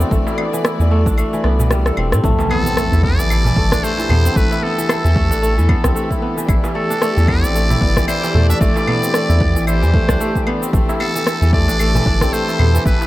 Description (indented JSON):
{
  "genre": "organic downtempo",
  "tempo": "113 BPM",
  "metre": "4/4",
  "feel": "swing 57% on 16ths",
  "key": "A dorian",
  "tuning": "A4 = 441 Hz",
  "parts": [
    { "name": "dark studio string section", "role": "sustained chords", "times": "0.0-13.1 s", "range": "E3 to D5", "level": "-25 LUFS", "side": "left 1 dB", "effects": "sidechain pumping" },
    { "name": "kora", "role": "arpeggios", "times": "0.0-13.1 s", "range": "E3 to A4", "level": "-21 LUFS", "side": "equal", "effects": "digital delay" },
    { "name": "round analog bass", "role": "bass", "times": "0.0-13.0 s", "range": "E1 to A2", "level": "-15 LUFS", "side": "equal", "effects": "tube saturation, sidechain pumping" },
    { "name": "electronic cabasa, claves and rim click", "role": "drums", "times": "0.0-13.1 s", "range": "none", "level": "-23 LUFS", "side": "equal", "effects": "none" },
    { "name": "darbuka", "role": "percussion", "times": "0.0-13.1 s", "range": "none", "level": "-26 LUFS", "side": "right 2 dB", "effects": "none" },
    { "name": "electronic kick drum", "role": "drums", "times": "0.1-13.0 s", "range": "none", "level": "-18 LUFS", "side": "equal", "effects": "none" },
    { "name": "impact", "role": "sound effects", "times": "2.2-4.4 s", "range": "none", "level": "-23 LUFS", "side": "equal", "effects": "none" },
    { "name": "quartz singing bowl", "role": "texture", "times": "2.2-13.1 s", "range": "A5", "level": "-32 LUFS", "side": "left 3 dB", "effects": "none" },
    { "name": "trumpet with metal mute", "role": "melody", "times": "2.5-13.1 s", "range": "A4 to E5", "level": "-22 LUFS", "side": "equal", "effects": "vintage 12-bit sampler grit, digital delay" }
  ],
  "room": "studio reverb",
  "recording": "none",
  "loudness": "-13 LUFS",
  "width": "side -16 dB against mid",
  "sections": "0.0-2.2 A section; 2.2-13.1 B section",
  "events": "kick drops out 1.2-2.2; drum fill 1.4-2.2; impact 2.2-4.4",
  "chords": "0.0 Am7"
}